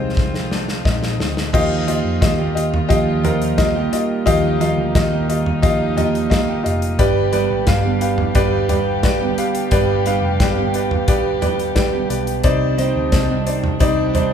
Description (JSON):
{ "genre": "piano-driven pop", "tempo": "88 BPM", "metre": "4/4", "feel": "straight", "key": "Eb major", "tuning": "A4 = 441 Hz", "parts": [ { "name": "warm upright piano", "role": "accompaniment", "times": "0.0-14.3 s", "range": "G2 to F5", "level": "-20 LUFS", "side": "left 2 dB", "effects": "none" }, { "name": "warm studio string section", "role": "sustained chords", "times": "0.0-14.3 s", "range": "C3 to G4", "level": "-30 LUFS", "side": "left 2 dB", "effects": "none" }, { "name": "hollow-body short-scale picked electric bass", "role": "bass", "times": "0.0-14.3 s", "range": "F1 to F2", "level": "-23 LUFS", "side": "equal", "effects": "none" }, { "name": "modern studio drum kit", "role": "drums", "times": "0.2-14.3 s", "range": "crash cymbal, hi-hat, kick drum, snare drum, toms", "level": "-20 LUFS", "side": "equal", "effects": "none" }, { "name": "picked steel-string acoustic guitar", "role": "riff", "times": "1.5-14.3 s", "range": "F3 to G4", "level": "-23 LUFS", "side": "right 7 dB", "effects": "none" } ], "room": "moderate large studio reverb, RT60 1.3 s", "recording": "band playing live in one room", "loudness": "-15 LUFS", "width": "side -8 dB against mid", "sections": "0.0-1.5 A section; 1.5-14.3 B section", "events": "upright piano solo 0.0-1.5; drum fill 0.2-1.5", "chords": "0.0 Fm7/C; 1.5 Ebadd9; 7.0 G; 12.4 Cmadd9" }